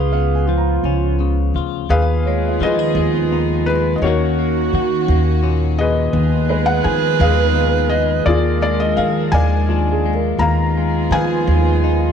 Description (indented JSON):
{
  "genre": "acoustic folk-pop ballad",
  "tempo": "56 BPM (dotted quarters)",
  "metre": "6/8",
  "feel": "straight",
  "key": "unclear",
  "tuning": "A4 = 440 Hz",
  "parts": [
    { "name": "felt-muted upright piano", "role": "melody", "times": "0.0-12.1 s", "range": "F4 to Bb5", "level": "-21 LUFS", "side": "left 3 dB", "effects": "slapback echo" },
    { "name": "breathy clarinet", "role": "second line", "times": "0.0-12.1 s", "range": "F4 to Cb5", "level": "-22 LUFS", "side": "right 17 dB", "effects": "none" },
    { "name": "direct-recorded clean electric guitar", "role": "accompaniment", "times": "0.0-12.1 s", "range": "Eb2 to Ab4", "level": "-22 LUFS", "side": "left 17 dB", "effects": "none" },
    { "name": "upright bass", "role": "bass", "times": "0.0-12.1 s", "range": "Db2 to Eb3", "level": "-18 LUFS", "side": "equal", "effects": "none" },
    { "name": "felt-muted upright piano", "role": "arpeggios", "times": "0.1-11.0 s", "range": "F4 to Bb5", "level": "-27 LUFS", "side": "right 9 dB", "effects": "none" },
    { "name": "clear studio string section", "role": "sustained chords", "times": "1.9-12.1 s", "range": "Eb3 to Ab4", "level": "-27 LUFS", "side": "equal", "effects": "none" }
  ],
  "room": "little or no reverb",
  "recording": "dry, close 1970s-style studio recording",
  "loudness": "-14 LUFS",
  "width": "side -7 dB against mid",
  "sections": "0.0-1.9 A section; 1.9-12.1 B section",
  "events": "none",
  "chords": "0.0 Db7; 1.9 Fm7b5/Eb; 4.0 Ebm7; 6.1 Fm7b5/Eb; 8.3 Bb7/Eb; 10.4 Fm7b5/Eb",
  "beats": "0.83 | 1.90 2.96 | 4.02 5.08 | 6.14 7.19 | 8.26 9.33 | 10.40 11.47"
}